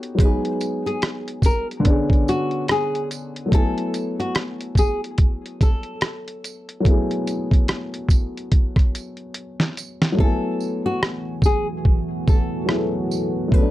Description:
lo-fi hip hop; 72 BPM; 4/4; swing 58% on 16ths; F# minor; A4 = 440 Hz
nylon-string guitar; melody; 0.0-13.7 s; F#4 to B4; -26 LUFS; left 1 dB
dark upright piano; accompaniment; 0.0-13.7 s; D3 to G#5; -25 LUFS; left 1 dB
lo-fi sampler-style drum kit; drums; 0.0-13.7 s; hi-hat, kick drum, rim click, snare drum; -18 LUFS; equal
tambourine; percussion; 0.6-13.3 s; -37 LUFS; right 7 dB
deep dark ambient pad; sustained chords; 10.9-13.7 s; D3 to G#5; -28 LUFS; right 1 dB; chorus, built-in reverb
little or no reverb; dark, warm production; -19 LUFS; side -15 dB against mid
0.0-10.2 A section; 10.2-13.7 B section
drum fill 9.4-10.2; hi-hats muted 10.2-13.7
0.2 G#m7; 1.9 C#5; 3.5 F#m11

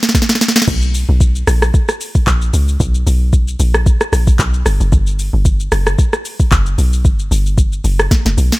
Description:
amapiano; 113 BPM; 4/4; swing 55% on 16ths; A4 = 440 Hz
smooth R&B drum kit; drums; 0.0-8.6 s; crash cymbal, handclaps, hi-hat, kick drum, rim click, shaker, snare drum; -13 LUFS; equal
deep log drum bass; bass; 0.7-8.5 s; F#1 to C#2; -14 LUFS; equal
digital ambience; -11 LUFS; side -20 dB against mid
0.7-8.6 A section
drum fill 0.0-0.7, 8.1-8.6; drop 0.7-8.6

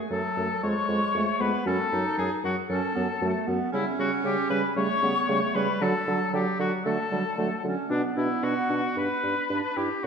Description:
quick classical-period movement for wind quintet; 115 BPM; 4/4; straight; D major from 3.7 s; A4 = 441 Hz
bright clarinet; accompaniment; 0.0-10.1 s; F#3 to E4; -30 LUFS; right 5 dB
hollow concert flute; melody; 0.1-10.1 s; D5 to C#6; -34 LUFS; left 7 dB
warm oboe; second line; 0.1-10.1 s; D4 to C#5; -29 LUFS; left 3 dB
warm French horn; accompaniment; 0.1-10.1 s; F#3 to D4; -31 LUFS; equal
dark bassoon; bass; 0.1-10.1 s; E#2 to D3; -32 LUFS; right 2 dB
wet recital hall reverb, RT60 1.7 s; -24 LUFS; side -6 dB against mid
0.0-10.1 A section
0.0 F#m; 0.6 C#/E#; 1.7 F#m; 3.7 C#7(b5, no3); 5.8 D; 7.9 Bm; 9.0 G

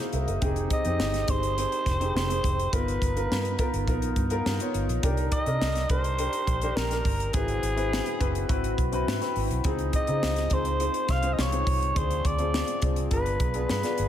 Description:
polished 1980s jazz-funk pop; 104 BPM; 4/4; straight; C minor; A4 = 440 Hz
warm grand piano; accompaniment; 0.0-14.1 s; Bb3 to E5; -30 LUFS; left 2 dB; lush chorus, slapback echo
vintage muted fingered electric bass; bass; 0.1-14.1 s; F1 to Db3; -29 LUFS; equal
crisp fusion drum kit; drums; 0.1-14.1 s; hi-hat, kick drum, snare drum; -29 LUFS; equal
growling alto saxophone; melody; 0.7-14.1 s; Ab4 to F5; -29 LUFS; right 1 dB
light reverb, small room ambience; -24 LUFS; side -10 dB against mid
0.0-14.1 A section
0.4 Fm9; 2.7 G7alt; 5.0 Cm9; 7.3 Ab7alt; 9.7 Dbmaj9; 12.0 Dm7b5; 13.1 G7b9

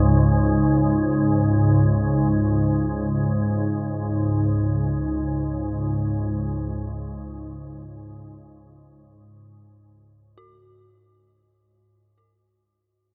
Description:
dark ambient drone; free time; A4 = 440 Hz
sweeping resonant pad; sustained chords; 0.0-11.6 s; C#3 to D#4; -26 LUFS; equal; chorus
dark detuned synth bell; arpeggios; 0.0-12.4 s; C#4 to F#4; -57 LUFS; equal
organ-like drone; drone; 0.0-11.7 s; C#2 to G#2; -25 LUFS; equal; ensemble chorus, built-in reverb
wet huge ambient reverb, RT60 7.6 s; -22 LUFS; mono
0.0-11.6 A section
fade-out 0.0-11.6
0.0 C#5

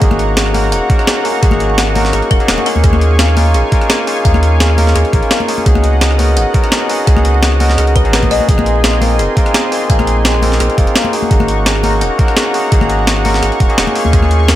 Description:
liquid drum and bass; 170 BPM; 4/4; straight; A4 = 436 Hz
barky tine electric piano; accompaniment; 0.0-14.6 s; Bb3 to Bb4; -17 LUFS; equal; ping-pong delay
warm analog pad; sustained chords; 0.0-14.6 s; Eb5 to Db6; -22 LUFS; equal; chorus, tremolo
kalimba; arpeggios; 0.0-14.6 s; Ab4 to Gb5; -20 LUFS; left 2 dB; vintage 12-bit sampler grit, ping-pong delay
warm sub bass; bass; 0.0-14.6 s; Eb1 to Eb2; -14 LUFS; equal
breakbeat sampler-style drum kit; drums; 0.0-14.6 s; hi-hat, rim click, snare drum; -17 LUFS; equal
electronic kick drum; drums; 0.0-14.2 s; -12 LUFS; equal; overdrive
congas; percussion; 0.1-14.3 s; -22 LUFS; left 6 dB
digital ambience; -10 LUFS; side -13 dB against mid
0.0-14.6 A section
0.0 Ab9sus4; 2.7 Eb9sus4; 5.7 Db9sus4; 8.5 Bb9sus4; 11.1 Ab9sus4; 14.0 Eb9sus4

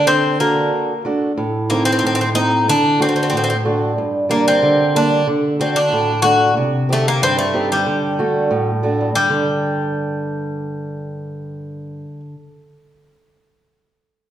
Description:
greek folk, Greek bouzouki band; 93 BPM; 2/4; straight; G harmonic minor; A4 = 440 Hz
Greek bouzouki; melody; 0.0-12.2 s; G3 to F#4; -18 LUFS; left 2 dB
fingerpicked acoustic archtop guitar; accompaniment; 0.0-12.3 s; G2 to A4; -18 LUFS; right 1 dB
wet recital hall reverb, RT60 1.4 s; dark, warm production; -15 LUFS; side -11 dB against mid
0.0-9.1 A section; 9.1-11.7 B section
speeding up 0.0-11.7
0.1 D; 1.4 Adim; 2.7 D; 4.0 Gm; 5.3 D; 6.6 Cm; 7.9 D; 9.1 G5

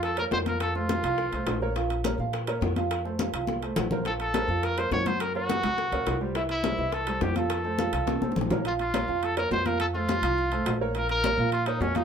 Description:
latin, salsa; 209 BPM; 4/4; straight; Bb harmonic minor; A4 = 439 Hz
clear trumpet; melody; 0.0-1.6, 4.1-12.0 s; Db4 to Db5; -29 LUFS; equal
warm grand piano; accompaniment; 0.0-12.0 s; E3 to Gb5; -30 LUFS; right 3 dB
upright bass; bass; 0.0-12.0 s; Bb1 to Bb2; -32 LUFS; left 1 dB
bongos; percussion; 0.0-8.6 s; -35 LUFS; left 4 dB
congas; percussion; 0.0-12.0 s; -33 LUFS; left 3 dB
timbales; percussion; 0.0-12.0 s; -36 LUFS; right 1 dB
wet small room reverb, RT60 0.5 s; band playing live in one room; -25 LUFS; side -7 dB against mid
0.0-8.7 A section; 8.7-12.0 A section
drum fill 3.5-4.1, 8.1-8.7
0.0 Bbm; 0.6 F; 1.8 Bbm; 2.9 F; 4.1 Bbsus2; 5.2 Gb; 6.4 C; 7.5 F; 8.7 Bbm; 9.8 F; 10.9 Bbm

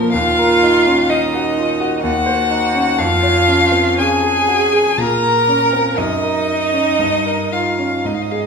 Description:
classical, slow romantic movement for piano trio; 55-65 BPM; 3/4; rubato; A4 = 441 Hz
rich violin; melody; 0.0-8.5 s; Bb4 to Bb5; -17 LUFS; left 6 dB
rich cello; second line; 0.0-8.5 s; Bb3 to Bb4; -17 LUFS; right 5 dB
clear concert grand piano; accompaniment; 0.0-8.5 s; Eb2 to Db5; -19 LUFS; equal
wet recital hall reverb, RT60 1.4 s; recorded in a church or concert hall; -13 LUFS; side -5 dB against mid
0.0-8.5 A section
0.1 Ebm; 2.0 Ebm6; 3.0 Db/F; 5.0 Bbm; 6.0 Ebm/Gb; 7.0 Eb7/G

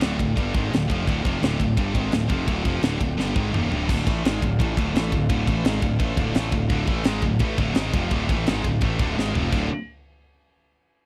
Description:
heavy metal; 170 BPM; 4/4; straight; D phrygian; A4 = 442 Hz
pipe organ, full organ; sustained chords; 0.0-9.7 s; D4 to G5; -39 LUFS; equal
heavy high-gain guitar; riff; 0.0-9.7 s; D2 to A3; -33 LUFS; equal; distortion
heavy high-gain guitar; riff; 0.0-3.9, 6.7-9.7 s; D2 to A3; -35 LUFS; equal; distortion
scooped high-gain guitar; riff; 0.0-9.7 s; D2 to A3; -30 LUFS; equal; distortion
fuzz picked electric bass; bass; 0.0-9.7 s; D1 to A1; -29 LUFS; equal; overdrive
tight metal drum kit; drums; 0.0-9.6 s; crash cymbal, kick drum, ride cymbal, snare drum, toms; -27 LUFS; equal
little or no reverb; dry, close 1970s-style studio recording; -23 LUFS; mono
0.0-3.9 A section; 3.9-9.5 B section; 9.5-10.9 C section
drum fill 3.2-3.9, 9.2-9.5
0.0 Dm

